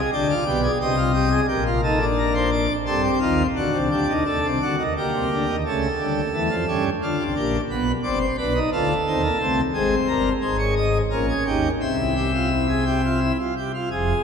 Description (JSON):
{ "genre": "classical, baroque-style 3-part fugue for pipe organ", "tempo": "87 BPM", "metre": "3/4", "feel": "straight", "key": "unclear", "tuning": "A4 = 441 Hz", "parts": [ { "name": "pipe organ, plenum", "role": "solo", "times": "0.0-14.2 s", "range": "F1 to E5", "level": "-19 LUFS", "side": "equal", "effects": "none" } ], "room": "wet cathedral reverb, RT60 4.5 s", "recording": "minimal, uncompressed stereo recording", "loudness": "-19 LUFS", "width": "side -6 dB against mid", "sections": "0.0-5.6 A section; 5.6-13.9 B section", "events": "none", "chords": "0.0 G; 0.8 Cm; 1.5 Gm/Bb; 2.9 Am7b5/G; 3.6 D; 5.0 Gm; 5.6 A7/C#; 7.0 Dm; 7.7 G7; 9.1 Cm/Eb; 9.7 Abmaj9/G; 11.1 Gdim/Bb; 11.8 C", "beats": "0.12 0.80 | 1.49 2.18 2.87 | 3.57 4.26 4.95 | 5.65 6.34 7.03 | 7.71 8.39 9.07 | 9.74 10.43 11.11 | 11.81 12.52 13.22 | 13.92" }